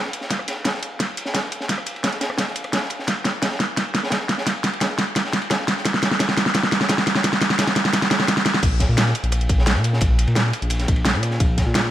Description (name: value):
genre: liquid drum and bass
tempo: 173 BPM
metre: 4/4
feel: straight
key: unclear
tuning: A4 = 440 Hz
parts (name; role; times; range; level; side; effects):
- crunchy breakbeat drum kit; drums; 0.0-11.9 s; ride cymbal, snare drum; -27 LUFS; equal; high-pass filter on cymbals, high-pass filter on snare, high-pass filter on room
- pop drum kit; drums; 0.1-11.8 s; crash cymbal, hi-hat, rim click, snare drum; -20 LUFS; equal; none
- electronic kick drum; drums; 0.3-11.6 s; none; -23 LUFS; equal; high-pass filter on kick
- smooth synth bass; bass; 8.6-11.9 s; Bb1 to Bb2; -20 LUFS; equal; none
room: light reverb, small room ambience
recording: none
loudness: -18 LUFS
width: side -12 dB against mid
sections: 0.0-8.6 A section; 8.6-11.9 B section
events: build-up 0.0-8.6; drum fill 0.0-8.6; drop 8.6-11.9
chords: none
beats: | 0.30 0.65 1.00 1.34 | 1.69 2.04 2.39 2.73 | 3.08 3.43 3.77 4.12 | 4.47 4.81 5.16 5.51 | 5.85 6.20 6.55 6.89 | 7.24 7.59 7.93 8.28 | 8.63 8.98 9.32 9.67 | 10.02 10.36 10.71 11.06 | 11.40 11.75